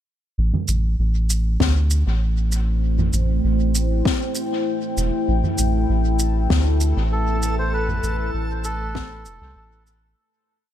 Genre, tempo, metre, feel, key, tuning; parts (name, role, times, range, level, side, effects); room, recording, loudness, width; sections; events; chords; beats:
ambient dub; 98 BPM; 4/4; straight; A minor; A4 = 440 Hz
deep dark ambient pad; sustained chords; 1.9-10.2 s; A3 to G5; -26 LUFS; left 1 dB; chorus, built-in reverb
soft dub sub bass; bass; 0.4-10.1 s; E1 to D2; -20 LUFS; equal
soft-mallet drum kit; drums; 0.5-10.0 s; shaker, snare drum, toms; -26 LUFS; left 1 dB; dub echo
electronic kick drum; drums; 1.6-9.1 s; -23 LUFS; right 1 dB; overdrive
backwards swelling texture; texture; 5.8-10.2 s; A4; -34 LUFS; equal; built-in reverb
melodica; melody; 7.1-9.8 s; A4 to C5; -28 LUFS; right 1 dB; dub echo
studio reverb; -18 LUFS; side -11 dB against mid
0.4-10.2 groove
fade-out 6.9-10.2
0.4 Am7
| 0.38 0.99 1.60 2.22 | 2.83 3.44 4.05 4.67 | 5.28 5.89 6.50 7.12 | 7.73 8.34 8.95 9.56